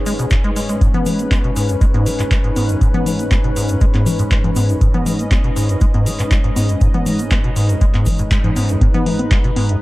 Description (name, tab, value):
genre	acid house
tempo	120 BPM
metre	4/4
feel	straight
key	G# minor pentatonic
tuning	A4 = 439 Hz
part	warm analog pad	sustained chords	0.0-9.8 s	G#2 to D#5	-24 LUFS	left 2 dB	chorus, sidechain pumping
part	granular cloud pad	texture	0.0-9.8 s	D#4 to B5	-27 LUFS	right 1 dB	built-in reverb, sidechain pumping
part	acid bass, square	riff	0.1-9.8 s	F#2 to B3	-19 LUFS	equal	tube saturation, wide subtle chorus
part	booming analog drum machine	drums	0.1-9.8 s	congas, handclaps, hi-hat	-23 LUFS	left 2 dB	none
part	egg shaker	percussion	0.1-8.8 s	none	-34 LUFS	equal	none
part	electronic kick drum	drums	0.3-9.4 s	none	-16 LUFS	equal	none
room	little or no reverb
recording	dark, warm production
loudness	-13 LUFS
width	side -18 dB against mid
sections	0.0-8.8 A section; 8.8-9.8 B section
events	filter sweep on acid bass 0.0-8.8; band accent 8.3; drop 8.8-9.8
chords	0.0 G#m